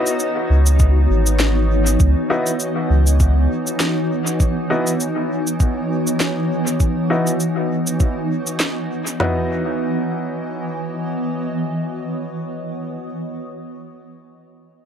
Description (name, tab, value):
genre	ambient dub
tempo	100 BPM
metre	4/4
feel	swing 56% on 16ths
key	C# minor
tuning	A4 = 441 Hz
part	granular cloud pad	sustained chords	0.0-12.4 s	E3 to D#5	-21 LUFS	equal	built-in reverb
part	Celtic harp	arpeggios	0.0-1.7 s	B3 to C#5	-35 LUFS	equal	none
part	warm upright piano	stabs	0.0-13.1 s	B3 to F#4	-25 LUFS	left 2 dB	low-pass filter, dub echo
part	electronic cabasa and snare drum	drums	0.1-9.2 s	none	-24 LUFS	equal	dub echo
part	soft dub sub bass	bass	0.5-3.5 s	G#1 to C#2	-14 LUFS	equal	none
part	organic electronic drum kit	drums	0.8-9.4 s	kick drum, snare drum, toms	-18 LUFS	equal	none
room	moderate spring reverb, RT60 1.6 s, digital ambience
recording	none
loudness	-17 LUFS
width	side -8 dB against mid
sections	0.0-9.2 A section; 9.2-11.6 B section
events	none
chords	0.0 C#m11